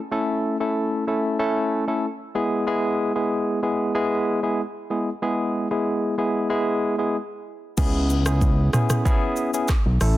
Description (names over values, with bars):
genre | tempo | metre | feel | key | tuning
afrobeats | 94 BPM | 4/4 | straight | C# minor | A4 = 439 Hz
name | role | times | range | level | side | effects
barky tine electric piano | accompaniment | 0.1-10.2 s | G#3 to A4 | -22 LUFS | equal | medium stereo tremolo
fat analog bass | bass | 7.8-10.2 s | A1 to C#2 | -20 LUFS | equal | none
afro-pop drum kit | drums | 7.8-10.2 s | crash cymbal, handclaps, hi-hat, kick drum, rim click, shaker, toms | -22 LUFS | equal | soft clipping on snare
room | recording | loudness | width
light reverb | dense, heavily limited modern master | -20 LUFS | side -15 dB against mid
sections
0.0-7.8 A section; 7.8-10.2 B section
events
none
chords
0.0 A; 2.4 E; 7.8 C#m7